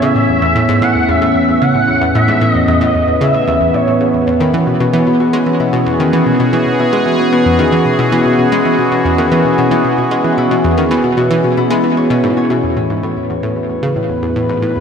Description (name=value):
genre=ambient, sequencer-driven space music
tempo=113 BPM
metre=4/4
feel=straight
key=unclear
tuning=A4 = 440 Hz
part: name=expressive portamento lead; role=melody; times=0.0-4.3 s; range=C#5 to F#5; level=-15 LUFS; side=equal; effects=ensemble chorus, tape echo
part: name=sweeping resonant pad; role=sustained chords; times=0.0-14.8 s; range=A2 to B4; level=-14 LUFS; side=right 1 dB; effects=chorus
part: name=analog pluck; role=riff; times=0.0-14.8 s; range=D#2 to G#3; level=-16 LUFS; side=equal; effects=chorus, tape echo
part: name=Celtic harp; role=arpeggios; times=4.4-14.8 s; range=B3 to C#5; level=-17 LUFS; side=left 5 dB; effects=auto-pan, tape echo
room=wet lush hall reverb, RT60 2.9 s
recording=dreamy mix soaked in reverb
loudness=-11 LUFS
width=side -7 dB against mid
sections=0.0-12.8 A section; 12.8-14.8 B section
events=none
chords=0.0 A; 4.3 E; 12.8 Asus2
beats=| 0.02 0.56 1.09 1.62 | 2.15 2.68 3.21 3.74 | 4.27 4.80 5.33 5.87 | 6.40 6.93 7.46 7.99 | 8.52 9.05 9.58 10.11 | 10.64 11.17 11.71 12.24 | 12.77 13.30 13.83 14.36